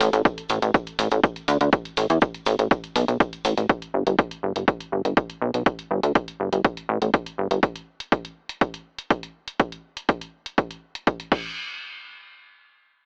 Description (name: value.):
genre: melodic techno.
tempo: 122 BPM.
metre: 4/4.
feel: straight.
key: unclear.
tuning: A4 = 439 Hz.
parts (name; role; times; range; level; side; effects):
plucky analog bass; bass; 0.0-7.6 s; G1 to E2; -24 LUFS; equal; tube saturation, sidechain pumping.
punchy analog drum machine; drums; 0.0-11.4 s; crash cymbal, hi-hat; -34 LUFS; equal; none.
cabasa; percussion; 0.0-3.7 s; none; -44 LUFS; equal; none.
electronic kick drum; drums; 0.3-11.4 s; none; -22 LUFS; equal; none.
room: little or no reverb.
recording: dry, gritty hardware recording, transformer saturation, telephone sound.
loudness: -24 LUFS.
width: mono.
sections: 0.0-11.6 A section; 11.6-13.1 B section.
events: none.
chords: none.